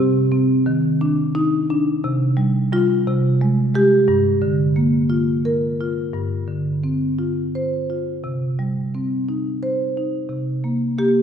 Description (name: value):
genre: classical, contemporary piece for solo marimba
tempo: 58 BPM (dotted quarters)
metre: 6/8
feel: straight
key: C minor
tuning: A4 = 440 Hz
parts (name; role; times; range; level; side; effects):
- marimba with medium mallets; solo; 0.0-11.2 s; G2 to C5; -17 LUFS; equal; none
room: wet recital hall reverb, RT60 1.7 s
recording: heard from further back in the room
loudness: -17 LUFS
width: side -8 dB against mid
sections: 0.0-11.2 A section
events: none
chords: 0.0 Cmadd9; 2.0 Csus4; 3.1 Abmaj7/C; 4.1 Gm7; 6.1 G7sus4; 8.2 Cm; 10.3 Gm/C